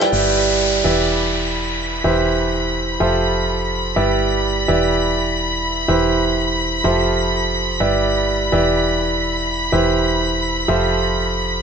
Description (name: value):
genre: house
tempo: 125 BPM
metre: 4/4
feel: swing 55% on 16ths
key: unclear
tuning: A4 = 440 Hz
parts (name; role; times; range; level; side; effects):
- bright studio violin section; sustained chords; 0.0-11.6 s; G5 to B6; -22 LUFS; left 1 dB; none
- clear concert grand piano; riff; 0.0-11.6 s; E3 to G5; -18 LUFS; right 2 dB; low-pass filter, tape echo
- solid FM bass; bass; 0.1-11.6 s; E1 to G1; -24 LUFS; equal; none
- downlifter; sound effects; 0.1-4.0 s; none; -24 LUFS; equal; none
room: moderate plate reverb, RT60 1.7 s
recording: nothing above 8.0 kHz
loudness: -16 LUFS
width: side -7 dB against mid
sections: 0.1-11.6 A section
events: none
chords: 0.1 G6; 0.8 Em7; 2.0 Cmaj7/E; 3.0 Fmaj9; 4.0 G6; 4.7 Em7; 5.9 Cmaj7/E; 6.8 Fmaj9; 7.8 G6; 8.5 Em7; 9.7 Cmaj7/E; 10.7 Fmaj9